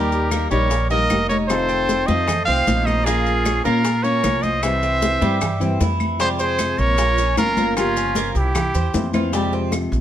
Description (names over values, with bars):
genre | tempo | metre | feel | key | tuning
latin, Cuban son and guajira | 153 BPM | 4/4 | straight | F minor | A4 = 440 Hz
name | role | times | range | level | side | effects
clear trumpet | melody | 0.0-9.1 s | F4 to F5 | -21 LUFS | equal | plate reverb
breathy bright jazz flute | second line | 0.0-9.1 s | Db4 to C5 | -28 LUFS | right 5 dB | none
nylon-string guitar | accompaniment | 0.0-10.0 s | C3 to G4 | -25 LUFS | left 3 dB | none
Cuban tres | arpeggios | 0.0-9.7 s | G3 to C5 | -27 LUFS | right 4 dB | none
upright bass | bass | 0.0-10.0 s | F1 to Bb2 | -23 LUFS | equal | none
bongos | percussion | 0.1-10.0 s | none | -29 LUFS | left 4 dB | none
congas | percussion | 0.1-10.0 s | none | -27 LUFS | equal | none
maracas | percussion | 0.1-10.0 s | none | -34 LUFS | left 5 dB | none
claves | percussion | 0.3-9.9 s | none | -34 LUFS | right 2 dB | none
room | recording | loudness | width
light reverb | none | -17 LUFS | side -11 dB against mid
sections
0.0-6.2 A section; 6.2-10.0 B section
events
none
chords
0.0 Eb; 1.5 F7; 3.1 Bbm; 4.6 C; 6.2 Fmadd9; 7.0 Bbm; 7.8 Gm7b5; 8.6 C7; 9.3 Fmadd9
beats
0.32 0.71 1.10 | 1.50 1.89 2.28 2.67 | 3.06 3.46 3.85 4.24 | 4.63 5.02 5.42 5.81 | 6.20 6.59 6.98 7.38 | 7.77 8.16 8.55 8.94 | 9.33 9.72